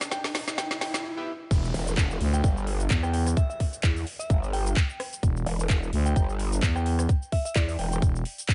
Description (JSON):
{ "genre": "bass house", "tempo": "129 BPM", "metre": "4/4", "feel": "swing 56% on 16ths", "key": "E minor", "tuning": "A4 = 440 Hz", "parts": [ { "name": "garage drum kit", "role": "drums", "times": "0.0-8.5 s", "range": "crash cymbal, handclaps, hi-hat, rim click, shaker, snare drum", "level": "-35 LUFS", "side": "equal", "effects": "overdrive" }, { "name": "riser and downlifter", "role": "sound effects", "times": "0.0-5.2 s", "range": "none", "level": "-41 LUFS", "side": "equal", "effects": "none" }, { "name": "glassy synth bell", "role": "melody", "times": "0.1-8.0 s", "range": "D5 to G5", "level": "-38 LUFS", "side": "equal", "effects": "chorus, tremolo, digital delay" }, { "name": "electronic kick drum", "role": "drums", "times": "0.1-8.5 s", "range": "none", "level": "-26 LUFS", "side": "equal", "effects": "high-pass filter on kick" }, { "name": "band-passed chord stab", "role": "stabs", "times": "1.2-1.3 s", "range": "B3 to E5", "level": "-43 LUFS", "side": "equal", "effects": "phaser, subtle chorus, cassette tape, sidechain pumping, digital delay" }, { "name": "growling FM bass", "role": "bass", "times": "1.5-8.2 s", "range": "E1 to E2", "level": "-27 LUFS", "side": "equal", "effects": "overdrive, sidechain pumping" }, { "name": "growl bass", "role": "bass", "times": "1.7-8.0 s", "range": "E1 to E2", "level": "-30 LUFS", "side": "equal", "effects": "chorus, sidechain pumping" } ], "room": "little or no reverb", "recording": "nothing above 10.8 kHz", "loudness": "-26 LUFS", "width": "mono", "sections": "0.0-1.5 A section; 1.5-8.5 B section", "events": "build-up 0.0-1.5; drum fill 0.0-1.0; riser 0.0-1.0; break 1.0-1.5; drop 1.5-8.5", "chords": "0.0 Em" }